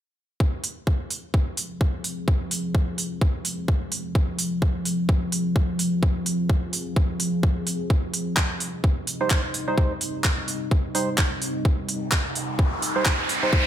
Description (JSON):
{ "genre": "bass house", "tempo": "128 BPM", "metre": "4/4", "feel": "swing 58% on 16ths", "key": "F minor", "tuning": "A4 = 440 Hz", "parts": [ { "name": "deep dark ambient pad", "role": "sustained chords", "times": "1.6-13.7 s", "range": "C3 to Ab4", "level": "-29 LUFS", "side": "equal", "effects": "chorus, built-in reverb, sidechain pumping" }, { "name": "electronic kick drum", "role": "drums", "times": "0.4-13.6 s", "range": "none", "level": "-23 LUFS", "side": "equal", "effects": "none" }, { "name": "garage drum kit", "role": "drums", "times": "0.6-13.4 s", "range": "handclaps, hi-hat", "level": "-26 LUFS", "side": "right 1 dB", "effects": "none" }, { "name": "percussive organ stab", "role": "stabs", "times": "9.2-13.7 s", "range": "G3 to C5", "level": "-27 LUFS", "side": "right 3 dB", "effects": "analog chorus, sidechain pumping, digital delay" }, { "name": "riser", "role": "sound effects", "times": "12.2-13.7 s", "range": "none", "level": "-26 LUFS", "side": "right 1 dB", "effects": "none" } ], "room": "little or no reverb", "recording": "none", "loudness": "-22 LUFS", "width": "side -11 dB against mid", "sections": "0.4-13.7 A section", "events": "riser 12.2-13.7", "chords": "0.4 Fm; 7.9 Cm" }